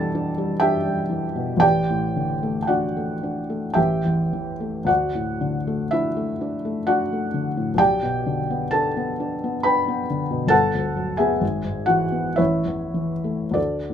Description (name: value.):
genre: classical, romantic nocturne for solo piano.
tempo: 45-68 BPM.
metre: 3/4.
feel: rubato.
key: D major.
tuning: A4 = 439 Hz.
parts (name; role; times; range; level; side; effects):
felt-muted upright piano; solo; 0.0-13.9 s; G1 to B5; -20 LUFS; equal; none.
room: light reverb.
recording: minimal, uncompressed stereo recording.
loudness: -20 LUFS.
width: side -8 dB against mid.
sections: 0.0-13.9 A section.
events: none.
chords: 0.0 Em7; 1.6 D/A; 3.8 A5; 4.9 D; 7.8 G/B; 10.5 Gmaj7; 11.4 E/G#; 12.4 A.